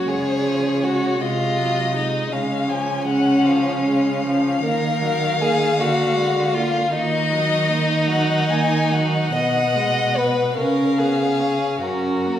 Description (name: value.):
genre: classical, slow romantic movement for string quartet.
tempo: 46-54 BPM (dotted quarters).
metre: 6/8.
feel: rubato.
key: unclear.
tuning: A4 = 440 Hz.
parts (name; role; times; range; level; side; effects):
warm violin; melody; 0.0-12.4 s; A#4 to G#5; -24 LUFS; left 4 dB; none.
dark violin; second line; 0.0-12.4 s; C#4 to D#5; -21 LUFS; left 1 dB; none.
warm viola; accompaniment; 0.0-12.4 s; E#3 to C#4; -27 LUFS; right 3 dB; none.
warm cello; bass; 0.0-12.4 s; F#2 to D#3; -23 LUFS; right 2 dB; none.
room: wet recital hall reverb, RT60 1.5 s.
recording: recorded in a church or concert hall.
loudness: -17 LUFS.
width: side -10 dB against mid.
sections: 0.0-12.4 A section.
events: none.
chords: 0.1 C#; 1.2 G#7/B#; 2.3 C#; 4.6 D#m; 5.8 A#7/D; 6.9 D#m; 9.4 G#m/B; 10.6 C#7; 11.8 F#.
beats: | 0.06 1.21 | 2.32 3.44 | 4.64 5.79 | 6.93 8.09 | 9.35 10.58 | 11.82.